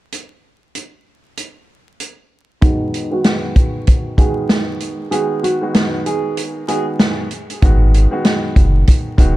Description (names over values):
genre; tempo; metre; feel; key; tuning
hip hop, boom-bap hip-hop; 96 BPM; 4/4; swing 60% on 16ths; G# minor; A4 = 440 Hz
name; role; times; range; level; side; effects
vintage drum kit; drums; 0.1-9.4 s; hi-hat, kick drum, snare drum; -14 LUFS; equal; none
nylon-string guitar; melody; 2.6-6.9 s; D#4 to G#4; -22 LUFS; right 2 dB; high-pass filter, low-pass filter, tape echo
warm upright piano; accompaniment; 2.6-9.4 s; D#3 to F#4; -22 LUFS; equal; high-pass filter, low-pass filter
warm sub bass; bass; 7.6-9.4 s; D#1 to G#1; -12 LUFS; equal; none
room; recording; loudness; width
small room reverb; dark, warm production, vinyl crackle; -13 LUFS; side -17 dB against mid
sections
0.1-2.6 A section; 2.6-7.6 B section; 7.6-9.4 C section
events
filter sweep 2.6-7.6; break 5.1-7.6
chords
0.1 N.C.; 2.6 G#m7